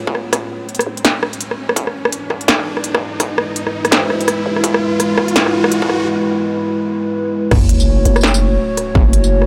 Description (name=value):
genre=half-time drum and bass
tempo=167 BPM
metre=4/4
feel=swing 59% on 16ths, half-time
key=F# minor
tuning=A4 = 439 Hz
part: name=dark analog pad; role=sustained chords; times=0.0-9.5 s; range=G#3 to C#5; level=-22 LUFS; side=equal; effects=lush chorus, sidechain pumping
part: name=growling 808-style bass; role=bass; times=0.0-9.5 s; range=E1 to D2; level=-22 LUFS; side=equal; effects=high-pass filter
part: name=riser and sub drop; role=sound effects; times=0.2-8.9 s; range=none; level=-26 LUFS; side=equal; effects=none
part: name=electronic kick drum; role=drums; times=0.1-9.0 s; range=none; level=-20 LUFS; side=equal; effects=distortion, overdrive, high-pass filter on kick
part: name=industrial drum kit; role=drums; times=0.1-9.5 s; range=crash cymbal, hi-hat, rim click, snare drum, tambourine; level=-20 LUFS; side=equal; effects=overdrive
room=light reverb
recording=none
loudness=-16 LUFS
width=mono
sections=0.0-7.5 A section; 7.5-9.5 B section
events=build-up 0.0-7.5; filter sweep on analog synth pad 0.0-7.5; riser 0.2-6.1; break 6.1-7.5; drop 7.5-9.5; impact 7.5-8.9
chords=0.0 F#m; 1.8 E; 7.5 F#m